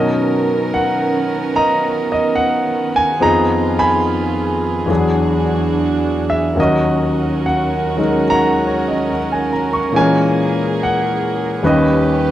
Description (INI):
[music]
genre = jazz ballad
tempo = 71 BPM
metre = 4/4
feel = swing 66% on 8ths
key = unclear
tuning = A4 = 439 Hz
[part]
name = clear concert grand piano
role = accompaniment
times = 0.0-12.3 s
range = D#2 to C#6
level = -15 LUFS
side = left 1 dB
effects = none
[part]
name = warm chamber string section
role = sustained chords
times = 0.0-12.3 s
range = D#3 to B4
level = -20 LUFS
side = right 4 dB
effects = none
[sound]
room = light reverb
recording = dry, close 1970s-style studio recording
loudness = -14 LUFS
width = side -12 dB against mid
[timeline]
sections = 0.0-12.3 A section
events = none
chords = 0.0 Bmaj9; 3.2 Fm7b5; 4.9 E9; 6.6 D#m7; 9.9 A#m7b5; 11.6 D#7b13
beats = 0.69 1.53 2.37 | 3.21 4.05 4.90 5.74 | 6.58 7.42 8.26 9.11 | 9.95 10.79 11.63